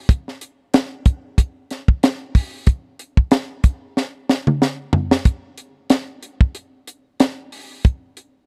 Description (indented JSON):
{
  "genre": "jazz",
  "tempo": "93 BPM",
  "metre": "4/4",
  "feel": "swing 56% on 16ths",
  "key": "none",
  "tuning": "none",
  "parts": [
    { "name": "tight funk drum kit", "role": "drums", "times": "0.1-8.3 s", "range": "hi-hat, kick drum, snare drum, toms", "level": "-17 LUFS", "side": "equal", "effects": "none" }
  ],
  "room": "little or no reverb",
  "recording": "dry, close 1970s-style studio recording",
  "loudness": "-20 LUFS",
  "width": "mono",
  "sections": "0.0-5.3 A section; 5.3-8.5 B section",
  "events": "drum fill 4.0-5.3",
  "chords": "none"
}